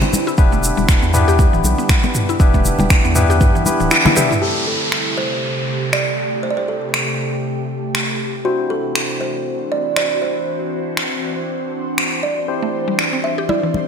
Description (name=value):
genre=afro house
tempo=119 BPM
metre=4/4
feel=swing 57% on 16ths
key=A dorian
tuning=A4 = 440 Hz
part: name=ethereal airy pad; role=sustained chords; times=0.0-13.9 s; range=C3 to C5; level=-25 LUFS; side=right 2 dB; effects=ensemble chorus, built-in reverb, phaser, sidechain pumping
part: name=mallet-like synth pluck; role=arpeggios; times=0.0-4.4, 12.6-13.7 s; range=E3 to G4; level=-22 LUFS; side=left 1 dB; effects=chorus, sidechain pumping, ping-pong delay
part: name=barky tine electric piano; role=stabs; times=0.0-13.9 s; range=A3 to E5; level=-23 LUFS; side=left 4 dB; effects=auto-pan, sidechain pumping, low-pass filter, ping-pong delay
part: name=congas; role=percussion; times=0.0-4.3, 13.5-13.9 s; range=none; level=-22 LUFS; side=left 2 dB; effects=none
part: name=egg shaker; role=percussion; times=0.0-4.4 s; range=none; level=-26 LUFS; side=equal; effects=none
part: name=round analog bass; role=bass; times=0.4-3.9 s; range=D1 to E2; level=-19 LUFS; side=equal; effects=sidechain pumping
part: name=electronic kick drum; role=drums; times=0.4-3.5 s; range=none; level=-14 LUFS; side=equal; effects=none
part: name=deep house drum kit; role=drums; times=0.9-13.1 s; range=finger snaps, toms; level=-20 LUFS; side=equal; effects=gated reverb
part: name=kalimba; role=melody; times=4.4-13.9 s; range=F#4 to E5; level=-23 LUFS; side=right 2 dB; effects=ping-pong delay
part: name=downlifter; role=sound effects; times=4.4-8.4 s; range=none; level=-24 LUFS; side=equal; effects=none
room=moderate lush hall reverb, RT60 1.9 s, digital ambience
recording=bright 1980s-style digital production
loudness=-15 LUFS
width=side -7 dB against mid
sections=0.0-4.4 A section; 4.4-13.9 B section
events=band accent 3.9; drum fill 4.0-4.4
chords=0.4 Em7; 4.4 Am7; 8.4 D9; 12.5 Cadd9